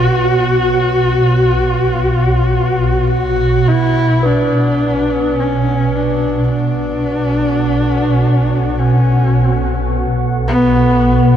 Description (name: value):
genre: ambient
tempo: 53 BPM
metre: 4/4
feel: straight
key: B minor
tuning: A4 = 438 Hz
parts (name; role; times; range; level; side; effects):
- rich horsehead fiddle; melody; 0.0-11.4 s; B3 to F#4; -16 LUFS; left 1 dB; diffuse ambient delay
- deep dark ambient pad; sustained chords; 0.0-11.4 s; B2 to C#5; -28 LUFS; equal; chorus, built-in reverb
- swarming drone; drone; 0.0-11.4 s; B1 to B2; -14 LUFS; right 1 dB; built-in reverb
- bronze singing bowl; texture; 0.0-11.4 s; B4; -26 LUFS; equal; none
room: moderate lush hall reverb, RT60 2.7 s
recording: dreamy mix soaked in reverb, cassette tape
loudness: -12 LUFS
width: side -9 dB against mid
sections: 0.0-4.3 A section; 4.3-11.4 B section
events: fade-out on ambient pad 0.0-4.3; fade-in on ambient pad 4.3-11.4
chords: 0.0 B5; 4.3 Bm7